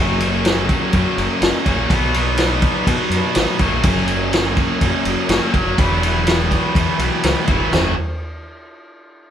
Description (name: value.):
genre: classic rock.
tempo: 124 BPM.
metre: 4/4.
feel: straight.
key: F# mixolydian.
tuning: A4 = 436 Hz.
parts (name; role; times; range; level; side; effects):
distorted electric guitar; riff; 0.0-7.9 s; F#2 to F#4; -22 LUFS; left 4 dB; distortion.
overdriven electric guitar; riff; 0.0-7.9 s; F#2 to E4; -22 LUFS; right 5 dB; none.
growling fingered electric bass; bass; 0.0-8.0 s; E1 to B2; -22 LUFS; equal; overdrive.
vintage drum kit; drums; 0.2-7.8 s; kick drum, ride cymbal, snare drum, splash cymbal, toms; -19 LUFS; equal; none.
room: moderate studio reverb, RT60 0.6 s.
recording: band playing live in one room.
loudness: -15 LUFS.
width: side -9 dB against mid.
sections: 0.0-7.7 A section; 7.7-9.3 B section.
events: none.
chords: 0.0 F#; 1.9 B; 3.6 F#; 5.8 Esus2; 7.7 F#.